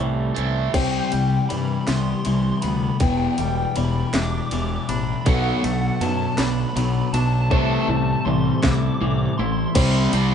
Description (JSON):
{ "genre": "post-rock", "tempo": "53 BPM (dotted quarters)", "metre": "6/8", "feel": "straight", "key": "unclear", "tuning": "A4 = 439 Hz", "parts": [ { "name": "lush unison pad", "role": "sustained chords", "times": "0.0-10.3 s", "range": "D3 to C5", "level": "-35 LUFS", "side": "equal", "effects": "chorus" }, { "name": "felt-muted upright piano", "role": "arpeggios", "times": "0.0-10.3 s", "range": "A4 to E5", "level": "-34 LUFS", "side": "right 1 dB", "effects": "none" }, { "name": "twangy electric guitar", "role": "arpeggios", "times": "0.0-9.8 s", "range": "E2 to E4", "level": "-32 LUFS", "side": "left 2 dB", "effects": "none" }, { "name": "crunchy overdriven guitar", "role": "riff", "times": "0.0-0.7, 5.3-10.3 s", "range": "A2 to C4", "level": "-26 LUFS", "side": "right 8 dB", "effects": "none" }, { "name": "fuzz fingered electric bass", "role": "bass", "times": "0.0-10.3 s", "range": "E1 to G2", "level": "-24 LUFS", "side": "right 1 dB", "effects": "overdrive" }, { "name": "garage drum kit", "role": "drums", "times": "0.4-10.3 s", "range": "crash cymbal, hi-hat, kick drum, ride cymbal, snare drum", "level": "-25 LUFS", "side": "equal", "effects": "none" }, { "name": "electric guitar through a small old amp", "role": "melody", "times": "0.7-10.3 s", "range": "F#5 to D6", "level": "-28 LUFS", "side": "left 1 dB", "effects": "none" }, { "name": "crunchy overdriven guitar", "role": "riff", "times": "0.7-10.3 s", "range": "E2 to C4", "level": "-24 LUFS", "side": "left 5 dB", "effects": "none" } ], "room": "wet studio reverb, RT60 0.9 s", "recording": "band playing live in one room, nothing above 10.6 kHz", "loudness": "-19 LUFS", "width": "side -8 dB against mid", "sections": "0.7-9.8 A section", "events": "build-up 0.7-9.8", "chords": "0.0 Am7/C; 0.7 Cmaj7; 3.0 Em7; 5.3 Bm7; 7.5 Am7/C; 9.8 Cmaj7" }